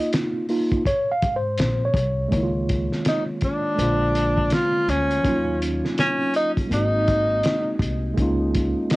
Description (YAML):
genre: hip hop, jazz-hop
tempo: 82 BPM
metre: 4/4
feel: swing 62% on 16ths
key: Db major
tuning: A4 = 440 Hz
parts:
  - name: mellow tine electric piano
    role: accompaniment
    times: 0.0-9.0 s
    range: D3 to F5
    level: -24 LUFS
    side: right 1 dB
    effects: fast stereo tremolo, cassette tape
  - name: cloth-damped thuddy drum kit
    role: drums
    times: 0.1-9.0 s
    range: hi-hat, kick drum, snare drum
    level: -25 LUFS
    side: equal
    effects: cassette tape
  - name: upright bass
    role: bass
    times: 1.2-8.7 s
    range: Ab1 to Ab2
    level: -26 LUFS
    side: equal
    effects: none
  - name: breathy tenor saxophone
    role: melody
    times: 3.1-9.0 s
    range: Db4 to F4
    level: -22 LUFS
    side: equal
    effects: analog delay
room: light reverb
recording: home recording on cassette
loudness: -19 LUFS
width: side -20 dB against mid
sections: 0.0-2.3 A section; 2.3-9.0 B section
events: tine electric piano solo 0.0-2.3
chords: 0.0 Db6; 3.8 Bb7; 5.2 Ebm7; 6.7 Ab7; 8.2 Db6